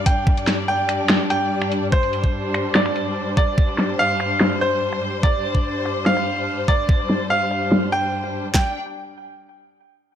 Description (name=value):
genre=heavy wobble dubstep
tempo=145 BPM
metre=4/4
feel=half-time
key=unclear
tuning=A4 = 439 Hz
part: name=dark studio string section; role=sustained chords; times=0.0-8.7 s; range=G2 to G5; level=-25 LUFS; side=left 2 dB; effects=sidechain pumping
part: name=clear grand piano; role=melody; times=0.1-8.7 s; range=C5 to G5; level=-23 LUFS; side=right 1 dB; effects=ping-pong delay
part: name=dubstep drum kit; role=drums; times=0.1-8.6 s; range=handclaps, kick drum, snare drum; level=-18 LUFS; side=equal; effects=none
part: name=dubstep drum kit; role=drums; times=0.1-8.4 s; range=finger snaps, hi-hat, snare drum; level=-21 LUFS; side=equal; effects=low-pass filter on hats, low-pass filter on snare
room=light reverb, digital ambience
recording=none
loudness=-18 LUFS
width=side -9 dB against mid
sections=0.0-8.5 A section; 8.5-10.2 B section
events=filter sweep on drum 0.0-8.5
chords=0.0 G5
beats=| 0.27 0.68 1.10 1.51 | 1.92 2.34 2.75 3.16 | 3.58 3.99 4.41 4.82 | 5.23 5.65 6.06 6.47 | 6.89 7.30 7.72 8.13 | 8.54